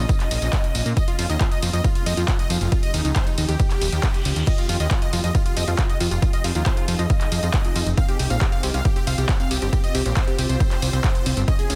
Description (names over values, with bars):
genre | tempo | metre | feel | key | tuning
uplifting trance | 137 BPM | 4/4 | straight | F minor | A4 = 440 Hz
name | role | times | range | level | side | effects
supersaw chords | melody | 0.0-11.8 s | Eb4 to F5 | -32 LUFS | equal | phaser, sidechain pumping, digital delay
analog pluck | second line | 0.0-11.8 s | Eb4 to F5 | -36 LUFS | equal | chorus, sidechain pumping, digital delay
shimmering ambient pad | sustained chords | 0.0-11.8 s | Eb3 to Ab4 | -36 LUFS | equal | chorus, built-in reverb, sidechain pumping
plucky analog bass | bass | 0.0-11.8 s | Eb1 to Bb2 | -25 LUFS | equal | sidechain pumping
electronic kick drum | drums | 0.1-11.6 s | none | -23 LUFS | equal | none
punchy analog drum machine | drums | 0.1-11.8 s | crash cymbal, handclaps, hi-hat, ride cymbal, tambourine | -31 LUFS | equal | none
reverse cymbal | sound effects | 4.2-4.5 s | none | -39 LUFS | equal | none
analog pluck | arpeggios | 4.5-11.7 s | C4 to F4 | -36 LUFS | equal | chorus, cassette tape, sidechain pumping, digital delay
room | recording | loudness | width
little or no reverb | dense, heavily limited modern master | -21 LUFS | mono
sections
0.0-11.8 A section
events
reverse cymbal 4.2-4.5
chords
0.0 Bbm; 1.0 Fm7; 2.7 Eb7; 4.5 Fm7; 8.0 Csus4